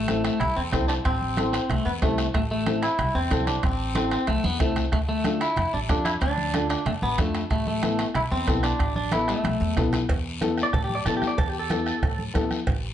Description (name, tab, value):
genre	latin, cumbia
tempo	186 BPM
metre	4/4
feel	straight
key	A minor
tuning	A4 = 438 Hz
part	clean electric guitar	melody	0.0-12.2 s	A3 to D5	-26 LUFS	equal	spring reverb
part	upright bass	bass	0.0-12.9 s	A1 to A2	-29 LUFS	equal	none
part	dark upright piano	accompaniment	0.1-12.6 s	B3 to A4	-28 LUFS	left 2 dB	none
part	bombo	percussion	0.1-12.8 s	none	-29 LUFS	right 1 dB	none
part	congas	percussion	0.1-12.8 s	none	-33 LUFS	right 2 dB	none
part	guiro	percussion	0.1-12.9 s	none	-38 LUFS	left 6 dB	none
part	timbales and cowbell	percussion	0.1-12.8 s	none	-36 LUFS	right 4 dB	none
room	light reverb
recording	nothing above 10.8 kHz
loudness	-22 LUFS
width	side -10 dB against mid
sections	0.0-10.1 A section; 10.1-12.9 B section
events	drum fill 4.3-4.9, 9.4-10.1; clean electric guitar solo 10.1-12.9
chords	0.0 Am; 4.9 Dm; 7.5 Asus2; 10.1 Esus4